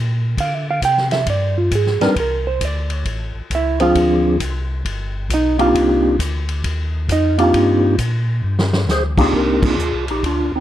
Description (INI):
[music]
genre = soul jazz organ trio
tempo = 134 BPM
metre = 4/4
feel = swing 65% on 8ths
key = C minor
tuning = A4 = 440 Hz
[part]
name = tonewheel organ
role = bass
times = 0.0-10.6 s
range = G1 to D3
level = -20 LUFS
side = equal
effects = chorus vibrato, slow rotary speaker
[part]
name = hollow-body jazz guitar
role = accompaniment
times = 0.4-8.0 s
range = Eb4 to G5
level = -18 LUFS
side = right 2 dB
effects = none
[part]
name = vintage drum kit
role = drums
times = 0.4-10.4 s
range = crash cymbal, hi-hat, kick drum, ride cymbal, snare drum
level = -24 LUFS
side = equal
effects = none
[part]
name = percussive tonewheel organ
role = melody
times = 2.0-10.6 s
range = F3 to C5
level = -17 LUFS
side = equal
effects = fast rotary speaker
[sound]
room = light reverb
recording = dark, warm production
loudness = -15 LUFS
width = side -12 dB against mid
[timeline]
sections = 0.0-9.3 A section; 9.3-10.6 B section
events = hollow-body jazz guitar solo 0.0-9.3; drum fill 8.4-8.9; band accent 9.6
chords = 0.4 Cadd9; 1.3 G5; 2.2 Csus2; 3.1 A; 4.0 Dm7b5; 4.8 G7; 5.7 Cm9; 8.4 G5; 9.3 Cm9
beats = | 0.37 0.82 1.27 1.71 | 2.16 2.61 3.06 3.50 | 3.95 4.40 4.85 5.29 | 5.74 6.19 6.64 7.09 | 7.54 7.99 8.43 8.88 | 9.33 9.78 10.23